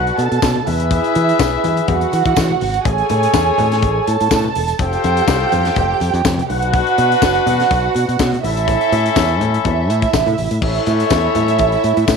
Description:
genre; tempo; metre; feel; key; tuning
disco; 124 BPM; 4/4; straight; A major; A4 = 440 Hz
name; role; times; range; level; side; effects
dark studio string section; second line; 0.0-12.2 s; E4 to A5; -18 LUFS; right 12 dB; none
clear horn section; stabs; 0.0-12.2 s; C#4 to E5; -20 LUFS; left 13 dB; none
modern bright fingered electric bass; bass; 0.0-12.2 s; E1 to E3; -19 LUFS; equal; none
tight funk drum kit; drums; 0.1-12.2 s; crash cymbal, hi-hat, kick drum, snare drum; -21 LUFS; left 4 dB; none
congas; percussion; 0.2-12.2 s; none; -27 LUFS; left 10 dB; none
tambourine; percussion; 0.4-12.2 s; none; -31 LUFS; right 14 dB; none
room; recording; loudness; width
light reverb; 1960s-style stereo with parts hard left and right; -13 LUFS; side -5 dB against mid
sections
0.0-10.6 A section; 10.6-12.2 A section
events
none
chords
0.0 Bm7; 0.7 E; 2.9 Amaj7; 4.8 F; 6.5 Bm; 8.4 A

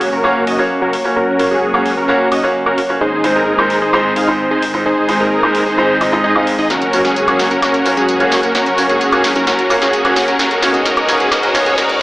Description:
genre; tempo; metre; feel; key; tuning
EDM, festival progressive house; 130 BPM; 4/4; straight; F# major; A4 = 439 Hz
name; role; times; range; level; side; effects
bright grand piano; accompaniment; 0.0-11.7 s; G#2 to E#5; -16 LUFS; equal; dub echo
lush unison pad; sustained chords; 0.0-12.0 s; D#3 to D#5; -21 LUFS; equal; chorus
dense compressed supersaw; riff; 0.0-12.0 s; C#4 to E#5; -15 LUFS; equal; low-pass filter, dub echo
big-room dance drum kit; drums; 0.0-12.0 s; hi-hat, snare drum, tambourine, woodblock; -20 LUFS; equal; high-pass filter on toms, high-pass filter on hats, high-pass filter on perc, high-pass filter on snare
riser; sound effects; 9.5-12.0 s; none; -24 LUFS; equal; none
room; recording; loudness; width
wet lush hall reverb, RT60 2.1 s; high-pass filter, AM radio sound; -11 LUFS; side -19 dB against mid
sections
0.0-12.0 A section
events
build-up 0.0-12.0; filter sweep on supersaw synth 0.0-12.0; filter sweep 0.0-12.0; drum fill 6.7-12.0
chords
0.0 F#; 3.0 G#; 6.7 F#; 10.4 G#m

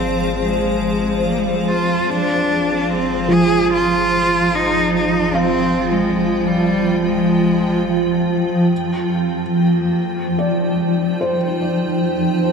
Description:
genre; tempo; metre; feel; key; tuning
ambient; 73 BPM; 4/4; straight; Ab lydian; A4 = 439 Hz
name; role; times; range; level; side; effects
clear cello; melody; 0.0-12.5 s; G3 to Ab4; -20 LUFS; equal; diffuse ambient delay
granular cloud pad; sustained chords; 0.0-12.5 s; F3 to G5; -18 LUFS; equal; built-in reverb
felt-muted upright piano; arpeggios; 0.0-12.5 s; F3 to F5; -24 LUFS; right 2 dB; diffuse ambient delay
round analog bass; bass; 0.0-8.7 s; Ab1; -33 LUFS; equal; none
pedal harmonium; drone; 0.0-12.5 s; F3 to C4; -28 LUFS; left 2 dB; none
room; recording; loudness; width
wet lush hall reverb, RT60 2.5 s; none; -15 LUFS; side -6 dB against mid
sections
0.0-8.7 A section; 8.7-12.5 B section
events
fade-out on analog synth bass 0.0-8.7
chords
0.0 Ab6; 2.1 Fm/Ab; 8.7 Abmaj7

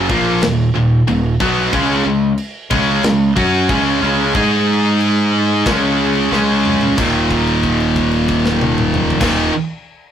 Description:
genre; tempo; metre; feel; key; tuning
heavy metal; 91 BPM; 4/4; straight; Eb minor; A4 = 440 Hz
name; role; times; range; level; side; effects
fuzz guitar; riff; 0.0-9.5 s; Eb2 to Ab4; -22 LUFS; left 1 dB; distortion
high-gain distorted guitar; riff; 0.0-9.5 s; Eb2 to Ab4; -16 LUFS; right 4 dB; distortion
tight distorted guitar; riff; 0.0-9.5 s; Eb2 to Ab4; -19 LUFS; left 8 dB; distortion
growling fingered electric bass; bass; 0.0-9.5 s; Eb1 to Ab2; -21 LUFS; equal; overdrive
tight metal drum kit; drums; 0.1-9.4 s; crash cymbal, kick drum, snare drum, toms; -23 LUFS; left 1 dB; none
room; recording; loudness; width
moderate studio reverb, RT60 0.5 s; rough rehearsal-room recording, warm saturation; -13 LUFS; side -9 dB against mid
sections
0.0-7.0 A section; 7.0-9.6 B section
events
drum fill 6.3-7.0; held note 7.0-9.2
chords
0.0 Ebm; 1.7 Db5; 4.4 Ab5; 5.7 Db5; 7.0 Eb5

